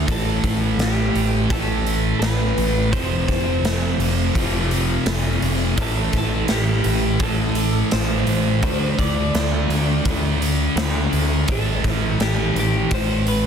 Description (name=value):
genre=rock, shoegaze and dream pop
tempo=84 BPM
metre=4/4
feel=straight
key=A minor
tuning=A4 = 440 Hz
part: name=fuzz guitar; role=riff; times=0.0-13.5 s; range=F2 to D4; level=-22 LUFS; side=right 1 dB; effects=distortion, lush chorus
part: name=growling picked electric bass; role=bass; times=0.0-13.5 s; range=F1 to D2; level=-22 LUFS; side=equal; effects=overdrive
part: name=electric guitar through a small old amp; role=melody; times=0.1-13.5 s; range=G4 to D5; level=-28 LUFS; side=left 1 dB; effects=wide subtle chorus, analog delay
part: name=raw garage drum kit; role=drums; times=0.1-13.4 s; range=hi-hat, kick drum, snare drum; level=-24 LUFS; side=equal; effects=none
room=small room reverb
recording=dense, heavily limited modern master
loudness=-18 LUFS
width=side -7 dB against mid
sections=0.0-13.5 A section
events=none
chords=0.1 A5; 2.9 F5; 5.8 Am7; 8.6 D5; 11.5 A5